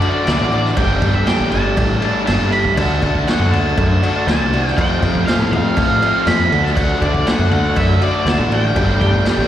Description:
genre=classic rock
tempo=120 BPM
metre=4/4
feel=straight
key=unclear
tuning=A4 = 439 Hz
part: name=octave-fuzz lead guitar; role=melody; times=0.0-9.5 s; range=D5 to B5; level=-21 LUFS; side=right 2 dB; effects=distortion, slapback echo
part: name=mellow tonewheel organ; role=sustained chords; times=0.0-9.5 s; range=A3 to A4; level=-29 LUFS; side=right 1 dB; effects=none
part: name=overdriven semi-hollow guitar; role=riff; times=0.0-9.5 s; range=D3 to G4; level=-21 LUFS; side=left 8 dB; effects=none
part: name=tight distorted guitar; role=riff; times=0.0-9.5 s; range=F2 to G4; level=-24 LUFS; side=right 10 dB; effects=distortion, slapback echo
part: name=vintage drum kit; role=drums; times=0.0-9.4 s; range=crash cymbal, kick drum, snare drum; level=-20 LUFS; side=equal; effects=none
part: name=cowbell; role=percussion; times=0.0-9.4 s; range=none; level=-30 LUFS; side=left 1 dB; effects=none
part: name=growling picked electric bass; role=bass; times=0.3-9.5 s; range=G1 to A2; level=-18 LUFS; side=equal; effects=overdrive
room=light reverb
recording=live gig heard through the venue's PA, recital hall reverb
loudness=-13 LUFS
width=side -11 dB against mid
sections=0.0-9.5 A section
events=none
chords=0.0 D; 0.8 Gsus2; 2.8 D; 4.8 F; 6.5 D; 8.8 Gsus2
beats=0.27 | 0.77 1.27 1.77 2.27 | 2.77 3.27 3.77 4.27 | 4.77 5.27 5.77 6.27 | 6.77 7.27 7.77 8.27 | 8.76 9.26

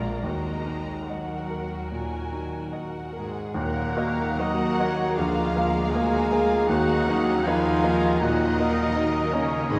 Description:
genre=classical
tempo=70-81 BPM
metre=4/4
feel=rubato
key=Eb minor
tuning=A4 = 440 Hz
part: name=clear baby grand piano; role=melody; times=0.0-9.8 s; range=Bb1 to F5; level=-30 LUFS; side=equal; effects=none
part: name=dark symphonic violin section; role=second line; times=0.0-9.8 s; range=D5 to Cb6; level=-38 LUFS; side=equal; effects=none
part: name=rich symphonic viola section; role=accompaniment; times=0.0-9.8 s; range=Gb3 to Bb4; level=-36 LUFS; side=equal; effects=none
part: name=rich chamber double bass section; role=bass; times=0.0-9.8 s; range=Ab1 to Eb2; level=-38 LUFS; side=equal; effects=none
part: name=rich symphonic cello section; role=bass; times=0.0-9.8 s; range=Ab2 to Ab3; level=-35 LUFS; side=equal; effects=none
part: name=rich symphonic violin section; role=melody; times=3.1-9.8 s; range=Ab4 to Ab5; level=-38 LUFS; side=equal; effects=none
part: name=bright trumpet section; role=stabs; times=3.1-9.8 s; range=Ab3 to Ab4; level=-36 LUFS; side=equal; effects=none
part: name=mellow French horn section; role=sustained chords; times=3.2-9.8 s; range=Ab3 to Ab4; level=-30 LUFS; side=equal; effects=none
part: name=dark clarinet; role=second line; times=3.5-9.8 s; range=Eb5 to Gb5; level=-40 LUFS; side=equal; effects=none
part: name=mellow silver concert flute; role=second line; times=3.6-9.8 s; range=Bb5 to Cb6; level=-39 LUFS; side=equal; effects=none
part: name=warm cor anglais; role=second line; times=3.6-9.8 s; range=Db5 to Ab5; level=-37 LUFS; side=equal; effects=none
part: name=mellow bassoon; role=accompaniment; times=3.6-9.8 s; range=Eb3 to Bb3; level=-37 LUFS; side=equal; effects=none
part: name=dark tuba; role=bass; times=3.6-9.8 s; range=Ab1 to Eb2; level=-36 LUFS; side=equal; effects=none
room=wet church reverb, RT60 3.9 s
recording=recorded in a church or concert hall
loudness=-25 LUFS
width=mono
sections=0.0-3.6 A section; 3.6-9.8 B section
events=none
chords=0.2 Ebm; 5.2 Bb7/D; 6.7 Ebm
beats=| 0.24 1.08 1.92 2.74 | 3.56 4.40 5.18 5.94 | 6.70 7.45 8.21 8.97 | 9.71

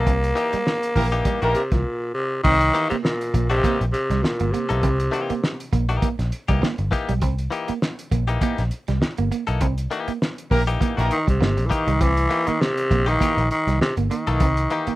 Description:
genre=funk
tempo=100 BPM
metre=4/4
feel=swing 56% on 16ths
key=unclear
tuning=A4 = 444 Hz
part: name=growling tenor saxophone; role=melody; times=0.0-5.7, 11.1-15.0 s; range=Bb2 to Bb3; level=-22 LUFS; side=equal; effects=none
part: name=direct-recorded clean electric guitar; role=accompaniment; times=0.0-14.9 s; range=E3 to A4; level=-26 LUFS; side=left 5 dB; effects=none
part: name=vintage muted picked electric bass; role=bass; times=0.0-14.9 s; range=G1 to C2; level=-22 LUFS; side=equal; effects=none
part: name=electric guitar at the edge of break-up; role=riff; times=0.1-15.0 s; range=E3 to C4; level=-28 LUFS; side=right 9 dB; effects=none
part: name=cloth-damped thuddy drum kit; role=drums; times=0.1-15.0 s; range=crash cymbal, hi-hat, kick drum, snare drum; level=-25 LUFS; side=equal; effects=none
part: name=warm horn section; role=second line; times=1.0-1.6, 10.5-11.2 s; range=Bb3 to Bb4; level=-23 LUFS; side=equal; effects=none
room=little or no reverb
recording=rough home demo mix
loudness=-19 LUFS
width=side -17 dB against mid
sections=0.0-2.4 A section; 2.4-15.0 B section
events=band accent 0.1-2.4, 9.6-12.0; break 1.8-2.4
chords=0.0 C7#9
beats=| 0.06 0.66 1.25 1.85 | 2.44 3.04 3.64 4.23 | 4.83 5.43 6.02 6.62 | 7.22 7.82 8.41 9.01 | 9.61 10.21 10.81 11.41 | 12.01 12.61 13.21 13.81 | 14.41

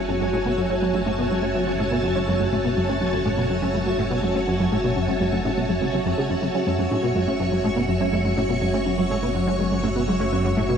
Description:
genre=ambient, sequencer-driven space music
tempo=123 BPM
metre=4/4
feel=straight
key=F# minor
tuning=A4 = 440 Hz
part: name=string machine, full ensemble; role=sustained chords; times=0.0-10.8 s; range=F#4 to C#6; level=-25 LUFS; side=equal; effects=ensemble chorus, shimmer reverb
part: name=plucky analog bass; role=riff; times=0.0-10.8 s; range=F#2 to C#4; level=-24 LUFS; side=equal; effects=ensemble chorus, ping-pong delay, shimmer reverb
part: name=analog drone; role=bass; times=0.0-10.8 s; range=F#1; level=-31 LUFS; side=equal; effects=chorus
part: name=twinkling granular texture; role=texture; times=0.0-10.8 s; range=E5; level=-35 LUFS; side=right 3 dB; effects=built-in reverb, shimmer reverb
part: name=soft round pluck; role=arpeggios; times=0.1-10.7 s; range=F#3 to G#4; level=-28 LUFS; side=right 2 dB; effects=chorus, auto-pan, ping-pong delay, shimmer reverb
room=wet huge ambient reverb, RT60 8.1 s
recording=dreamy mix soaked in reverb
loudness=-20 LUFS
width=side -7 dB against mid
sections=0.0-10.8 A section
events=none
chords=0.0 F#madd9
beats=0.21 | 0.69 1.18 1.67 2.16 | 2.65 3.13 3.62 4.11 | 4.60 5.08 5.57 6.06 | 6.55 7.04 7.52 8.01 | 8.50 8.99 9.47 9.96 | 10.45

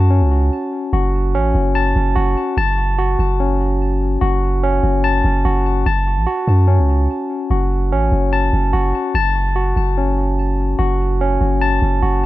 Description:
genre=hip hop, drill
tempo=146 BPM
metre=4/4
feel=half-time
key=F# minor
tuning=A4 = 440 Hz
part: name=barky tine electric piano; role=arpeggios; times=0.0-12.3 s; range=C#4 to A5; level=-18 LUFS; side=left 1 dB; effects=overdrive, auto-pan, low-pass filter, ping-pong delay
part: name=long sustained 808-style bass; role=bass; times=0.0-12.3 s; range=F#1 to F#2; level=-16 LUFS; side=equal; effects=none
room=digital ambience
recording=none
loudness=-15 LUFS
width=side -16 dB against mid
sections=0.0-5.9 A section; 5.9-12.3 B section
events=none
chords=0.0 F#m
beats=0.11 0.52 | 0.93 1.34 1.75 2.16 | 2.57 2.98 3.39 3.81 | 4.22 4.63 5.04 5.45 | 5.86 6.27 6.68 7.09 | 7.50 7.91 8.32 8.74 | 9.15 9.56 9.97 10.38 | 10.79 11.20 11.61 12.02

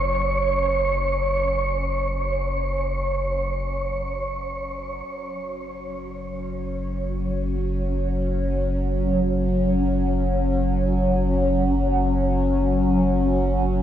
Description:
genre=ambient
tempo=free time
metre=none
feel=none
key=unclear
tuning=A4 = 437 Hz
part: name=warm sub bass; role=bass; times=0.0-13.8 s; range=F#1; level=-26 LUFS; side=equal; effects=none
part: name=overtone-sweeping drone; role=drone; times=0.0-13.8 s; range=F#3 to C#4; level=-24 LUFS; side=equal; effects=chorus, built-in reverb, phaser
part: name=wind-like tuned noise texture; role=texture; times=0.0-5.1 s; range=C#5 to C#6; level=-26 LUFS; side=right 2 dB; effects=built-in reverb
room=wet huge ambient reverb, RT60 8.0 s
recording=worn, warbling old tape, cassette tape, warbly pitch drift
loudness=-21 LUFS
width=side -10 dB against mid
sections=0.0-5.1 A section; 5.1-13.8 B section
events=fade-out on synth drone 0.0-5.1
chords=0.0 F#5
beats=free time

